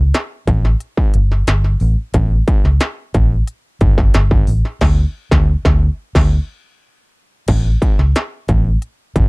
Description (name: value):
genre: funk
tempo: 90 BPM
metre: 4/4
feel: straight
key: A mixolydian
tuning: A4 = 440 Hz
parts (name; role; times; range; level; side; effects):
- vintage muted fingered electric bass; bass; 0.0-9.3 s; G1 to D2; -14 LUFS; equal; none
- industrial drum kit; drums; 0.1-9.3 s; crash cymbal, hi-hat, kick drum, snare drum; -15 LUFS; equal; distortion
room: little or no reverb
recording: dry, close 1970s-style studio recording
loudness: -13 LUFS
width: side -30 dB against mid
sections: 0.0-7.5 A section; 7.5-9.3 B section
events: band accent 4.8-7.5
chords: none